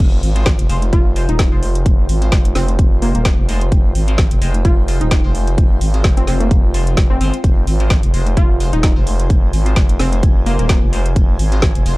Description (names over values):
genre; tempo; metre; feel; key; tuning
bass house; 129 BPM; 4/4; swing 55% on 16ths; F minor; A4 = 441 Hz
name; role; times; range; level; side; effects
growling FM bass; bass; 0.0-12.0 s; Eb1 to Ab1; -16 LUFS; equal; tube saturation, sidechain pumping
electronic kick drum; drums; 0.0-11.7 s; none; -13 LUFS; equal; overdrive
garage drum kit; drums; 0.0-12.0 s; crash cymbal, hi-hat, snare drum; -24 LUFS; equal; none
granular cloud pad; texture; 0.0-12.0 s; F4 to Ab5; -28 LUFS; equal; built-in reverb, sidechain pumping
band-passed chord stab; stabs; 0.4-12.0 s; Ab3 to C5; -29 LUFS; left 2 dB; phaser, cassette tape, sidechain pumping, digital delay
glassy wavetable pluck; melody; 0.9-10.7 s; Bb3 to F4; -24 LUFS; equal; chorus, cassette tape, digital delay
room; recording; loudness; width
little or no reverb; dark, warm production; -12 LUFS; side -21 dB against mid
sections
0.0-12.0 A section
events
filter sweep on FM bass 0.0-12.0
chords
0.0 Fm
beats
| 0.00 0.46 0.93 1.39 | 1.86 2.32 2.79 3.25 | 3.72 4.18 4.65 5.11 | 5.58 6.04 6.51 6.97 | 7.44 7.91 8.37 8.84 | 9.30 9.77 10.23 10.70 | 11.16 11.63